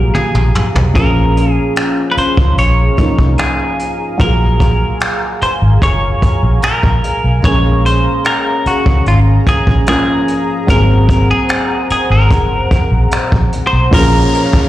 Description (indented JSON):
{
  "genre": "contemporary R&B",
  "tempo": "74 BPM",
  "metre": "4/4",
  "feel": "straight",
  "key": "Bb minor",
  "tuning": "A4 = 439 Hz",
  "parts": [
    { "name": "semi-hollow electric guitar", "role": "melody", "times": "0.0-14.7 s", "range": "F4 to Db5", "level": "-17 LUFS", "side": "equal", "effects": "tape echo" },
    { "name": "felt-muted upright piano", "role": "accompaniment", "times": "0.0-14.7 s", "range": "F3 to Ab4", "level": "-19 LUFS", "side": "equal", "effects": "none" },
    { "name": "warm analog pad", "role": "sustained chords", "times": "0.0-14.7 s", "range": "Db4 to Bb5", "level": "-21 LUFS", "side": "equal", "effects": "chorus" },
    { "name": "vintage muted fingered electric bass", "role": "bass", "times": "0.0-14.2 s", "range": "Gb1 to Db2", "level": "-12 LUFS", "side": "equal", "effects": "none" },
    { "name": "vintage brush drum kit", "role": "drums", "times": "0.1-14.7 s", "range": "finger snaps, hi-hat, kick drum, toms", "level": "-15 LUFS", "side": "equal", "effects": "vintage 12-bit sampler grit" },
    { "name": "downlifter", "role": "sound effects", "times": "13.9-14.7 s", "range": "none", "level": "-22 LUFS", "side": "left 2 dB", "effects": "none" }
  ],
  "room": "small room ambience",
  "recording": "played on a big sound system in a bare room, large studio reverb",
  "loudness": "-10 LUFS",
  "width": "side -14 dB against mid",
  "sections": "0.0-13.9 A section",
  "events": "drum fill 0.1-1.0",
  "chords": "0.0 Gbmaj9; 1.0 Bbm7; 4.2 Gbmaj9; 7.4 Bbm7; 10.7 Ab9; 13.9 Bbm7",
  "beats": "0.14 | 0.95 1.76 2.58 3.39 | 4.20 5.01 5.82 6.63 | 7.44 8.25 9.06 9.87 | 10.68 11.49 12.30 13.12 | 13.93"
}